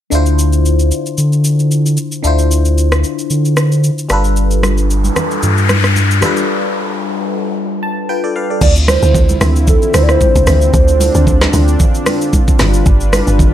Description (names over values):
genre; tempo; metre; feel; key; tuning
amapiano; 113 BPM; 4/4; swing 55% on 16ths; D dorian; A4 = 440 Hz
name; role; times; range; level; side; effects
barking FM electric piano; accompaniment; 0.1-8.8 s; D3 to A5; -17 LUFS; left 3 dB; phaser
warm sub bass; bass; 0.1-6.2 s; G1 to D3; -12 LUFS; equal; none
smooth R&B drum kit; drums; 0.1-13.5 s; crash cymbal, hi-hat, kick drum, rim click, shaker, snare drum; -15 LUFS; equal; none
noise sweep; sound effects; 4.8-7.6 s; none; -20 LUFS; left 3 dB; none
congas; percussion; 4.6-13.5 s; none; -22 LUFS; right 3 dB; none
hollow clarinet-like synth lead; melody; 8.6-11.5 s; A4 to D5; -16 LUFS; right 2 dB; chorus, digital delay
warm analog pad; sustained chords; 8.6-13.5 s; D3 to B4; -18 LUFS; equal; chorus, sidechain pumping
deep log drum bass; bass; 8.6-13.5 s; G1 to D2; -12 LUFS; equal; none
room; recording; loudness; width
little or no reverb; none; -10 LUFS; side -11 dB against mid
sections
0.1-8.6 A section; 8.6-13.5 B section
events
noise sweep 4.8-8.6; break 6.5-8.6; FM electric piano fill 7.6-8.6; drop 8.6-13.5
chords
0.1 Dm9; 4.1 G7; 8.6 Dm9; 12.6 G7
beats
| 0.12 0.65 1.18 1.71 | 2.24 2.77 3.30 3.83 | 4.37 4.90 5.43 5.96 | 6.49 7.02 7.55 8.08 | 8.61 9.14 9.68 10.21 | 10.74 11.27 11.80 12.33 | 12.86 13.39